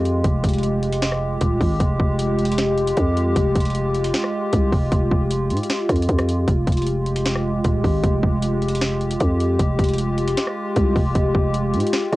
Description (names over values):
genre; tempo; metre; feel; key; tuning
hip hop, trap; 154 BPM; 4/4; half-time; F minor; A4 = 439 Hz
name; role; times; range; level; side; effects
hollow soft pad; sustained chords; 0.0-12.2 s; Ab3 to G4; -22 LUFS; equal; chorus, cassette tape
growling 808-style bass; bass; 0.0-12.2 s; Eb1 to Ab2; -21 LUFS; equal; none
trap drum kit; drums; 0.1-12.2 s; hi-hat, kick drum, rim click, snare drum; -23 LUFS; equal; cassette tape
room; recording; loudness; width
light reverb; home recording on cassette; -18 LUFS; side -18 dB against mid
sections
0.0-12.2 A section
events
none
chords
0.0 Fmadd9